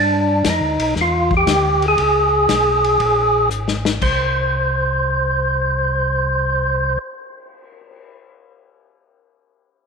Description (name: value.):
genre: soul jazz organ trio.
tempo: 118 BPM.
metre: 4/4.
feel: swing 69% on 8ths.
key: unclear.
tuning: A4 = 441 Hz.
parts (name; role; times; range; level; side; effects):
percussive tonewheel organ; melody; 0.0-7.0 s; D4 to C5; -16 LUFS; equal; slow rotary speaker, overdrive.
mellow tonewheel organ; bass; 0.0-7.0 s; Ab1 to G2; -22 LUFS; equal; chorus vibrato, slow rotary speaker.
warm soul drum kit; drums; 0.4-8.0 s; crash cymbal, cymbal swell, hi-hat, kick drum, ride cymbal, snare drum; -23 LUFS; left 4 dB; none.
room: light reverb, small room ambience.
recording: 1960s-style stereo.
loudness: -15 LUFS.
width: side -5 dB against mid.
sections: 0.0-4.0 A section; 4.0-8.1 B section.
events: drum fill 3.5-4.0.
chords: 0.0 G7; 2.0 Db5; 4.0 N.C..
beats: 0.45 0.95 1.46 | 1.97 2.48 2.99 3.50 | 4.01 4.52 5.03 5.54 | 6.05 6.55 7.06 7.57.